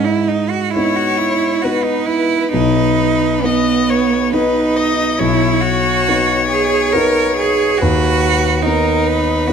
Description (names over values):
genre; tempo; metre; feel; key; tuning
classical, slow romantic movement for piano trio; 65-72 BPM; 3/4; rubato; unclear; A4 = 440 Hz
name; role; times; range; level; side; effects
clear cello; second line; 0.0-9.5 s; B3 to A#4; -16 LUFS; right 6 dB; none
warm concert grand piano; accompaniment; 0.0-9.5 s; B1 to B4; -18 LUFS; left 2 dB; none
clear violin; melody; 0.7-9.5 s; A#4 to D#5; -19 LUFS; left 6 dB; none
room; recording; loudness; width
moderate scoring stage reverb, RT60 1.8 s; close, detailed microphones; -13 LUFS; side -7 dB against mid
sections
0.0-9.5 A section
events
none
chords
0.0 G#m; 2.5 B; 7.8 B/D#